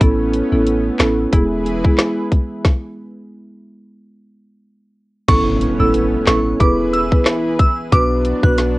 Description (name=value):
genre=dancehall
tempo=91 BPM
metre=4/4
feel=swing 56% on 16ths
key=A major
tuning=A4 = 440 Hz
part: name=marimba with medium mallets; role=accompaniment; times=0.0-8.8 s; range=G#3 to B4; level=-18 LUFS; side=right 1 dB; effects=none
part: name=lush unison pad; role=sustained chords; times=0.0-8.8 s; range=E3 to B4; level=-26 LUFS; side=left 1 dB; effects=chorus, sidechain pumping
part: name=clean 808-style bass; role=bass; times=0.0-8.8 s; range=E1 to B1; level=-21 LUFS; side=equal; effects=none
part: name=island pop drum kit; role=drums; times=0.0-8.8 s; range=crash cymbal, handclaps, hi-hat, kick drum, rim click, snare drum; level=-15 LUFS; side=equal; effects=none
part: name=glassy synth bell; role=melody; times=5.3-8.5 s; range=C#6 to F#6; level=-21 LUFS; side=right 1 dB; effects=chorus, tape echo
part: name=impact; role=sound effects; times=5.4-7.9 s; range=none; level=-27 LUFS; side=equal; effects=none
room=moderate studio reverb, RT60 0.6 s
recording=worn, warbling old tape, cassette tape, warbly pitch drift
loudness=-14 LUFS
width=side -20 dB against mid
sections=0.0-5.3 A section; 5.3-8.8 B section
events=stop 2.6-5.3; impact 5.3-7.9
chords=0.0 Aadd9; 1.3 E; 2.6 N.C.; 5.3 Aadd9; 6.6 E; 7.9 Bm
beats=| 0.01 0.67 1.33 1.99 | 2.65 3.31 3.96 4.62 | 5.28 5.94 6.60 7.26 | 7.92 8.58